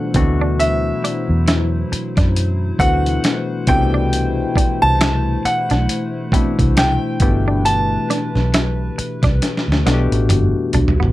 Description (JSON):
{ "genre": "R&B, neo-soul", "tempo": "68 BPM", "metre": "4/4", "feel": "swing 58% on 16ths", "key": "unclear", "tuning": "A4 = 437 Hz", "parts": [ { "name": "bright grand piano", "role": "melody", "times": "0.0-8.9 s", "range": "E5 to A5", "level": "-21 LUFS", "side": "equal", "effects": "slapback echo" }, { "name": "barky tine electric piano", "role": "accompaniment", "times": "0.0-11.1 s", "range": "A2 to G4", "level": "-22 LUFS", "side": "left 4 dB", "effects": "overdrive, phaser" }, { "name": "hollow soft pad", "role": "sustained chords", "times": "0.0-11.1 s", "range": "F#3 to C5", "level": "-28 LUFS", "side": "equal", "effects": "chorus" }, { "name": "dusty soul sampler-style drum kit", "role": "drums", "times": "0.1-11.1 s", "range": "hi-hat, kick drum, snare drum, toms", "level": "-19 LUFS", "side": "equal", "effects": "none" }, { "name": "semi-hollow electric guitar", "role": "second line", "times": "0.2-11.1 s", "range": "B3 to E4", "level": "-24 LUFS", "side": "right 3 dB", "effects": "phaser" }, { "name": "vintage muted fingered electric bass", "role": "bass", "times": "0.2-11.1 s", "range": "G1 to F#2", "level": "-18 LUFS", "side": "equal", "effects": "none" } ], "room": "light reverb", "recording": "none", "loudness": "-15 LUFS", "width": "side -16 dB against mid", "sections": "0.0-11.1 A section", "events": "drum fill 9.4-11.1", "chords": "0.1 D9; 3.7 C6; 7.2 G69" }